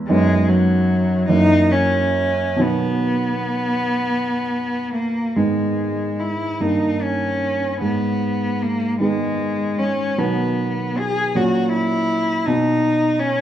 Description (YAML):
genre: classical, romantic duo for cello and grand piano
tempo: 42-55 BPM (dotted quarters)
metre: 6/8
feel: rubato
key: B major, G# minor from 5.4 s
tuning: A4 = 437 Hz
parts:
  - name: warm grand piano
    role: accompaniment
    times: 0.0-13.4 s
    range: F#2 to C#4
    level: -20 LUFS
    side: right 2 dB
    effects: none
  - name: rich cello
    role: melody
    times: 0.1-13.4 s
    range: F#3 to G#4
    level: -20 LUFS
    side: left 1 dB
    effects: none
room: moderate recital hall reverb, RT60 1.6 s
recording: none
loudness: -17 LUFS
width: side -11 dB against mid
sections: 0.0-5.4 A section; 5.4-13.4 B section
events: none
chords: 0.1 B/F#; 1.3 F#7; 2.6 B; 5.4 G#m; 6.6 D#/G; 7.8 G#m; 10.2 B; 11.4 F#/A#; 12.5 B